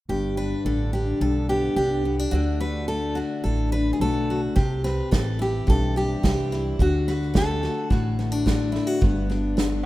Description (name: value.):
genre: honky-tonk and classic country.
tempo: 108 BPM.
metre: 4/4.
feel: straight.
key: G major.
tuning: A4 = 440 Hz.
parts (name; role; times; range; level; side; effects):
picked steel-string acoustic guitar; melody; 0.1-8.7 s; F#4 to B4; -28 LUFS; right 1 dB; none.
picked steel-string acoustic guitar; accompaniment; 0.1-9.9 s; G2 to F#4; -26 LUFS; left 3 dB; none.
upright bass; bass; 0.1-9.9 s; G1 to D2; -26 LUFS; right 1 dB; none.
unplugged drum kit; drums; 4.6-9.7 s; hi-hat, kick drum, snare drum; -24 LUFS; right 1 dB; none.
room: light reverb, small room reverb.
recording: rough home demo mix.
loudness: -21 LUFS.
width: side -16 dB against mid.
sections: 0.1-9.0 A section.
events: none.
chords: 0.1 G; 2.3 D; 4.6 C; 6.8 D; 9.0 G.